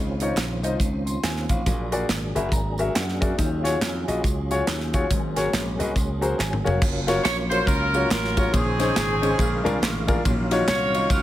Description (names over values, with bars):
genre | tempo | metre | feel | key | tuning
uptempo gospel | 140 BPM | 4/4 | swing 61% on 8ths | unclear | A4 = 440 Hz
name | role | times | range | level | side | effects
warm grand piano | accompaniment | 0.0-11.1 s | Ab2 to C6 | -26 LUFS | left 2 dB | none
mellow tonewheel organ | sustained chords | 0.0-11.2 s | Db3 to F5 | -31 LUFS | right 2 dB | chorus vibrato, fast rotary speaker
slap bass | bass | 0.0-11.2 s | F1 to F#2 | -27 LUFS | equal | none
modern studio drum kit | drums | 0.2-11.2 s | crash cymbal, hi-hat, kick drum, ride cymbal, snare drum, toms | -26 LUFS | equal | none
tambourine and handclaps | percussion | 0.2-11.2 s | none | -36 LUFS | right 2 dB | none
clear saxophone section | melody | 7.2-11.2 s | C4 to Db5 | -24 LUFS | right 1 dB | none
room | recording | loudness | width
light reverb | none | -20 LUFS | side -13 dB against mid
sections
0.0-6.8 A section; 6.8-11.2 B section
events
grand piano fill 2.1-3.4, 6.0-6.8; drum fill 6.4-6.8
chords
0.0 Dbmaj9; 1.7 Bbaug7; 3.4 Ebm11; 5.1 Ab9sus4; 6.8 Gbmaj7; 8.5 Bbm11; 9.4 Bb7; 10.2 Ebm9/Bb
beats
0.37 0.80 1.23 | 1.66 2.09 2.52 2.95 | 3.38 3.81 4.24 4.67 | 5.10 5.53 5.96 6.39 | 6.82 7.25 7.68 8.11 | 8.54 8.96 9.39 9.82 | 10.25 10.68 11.10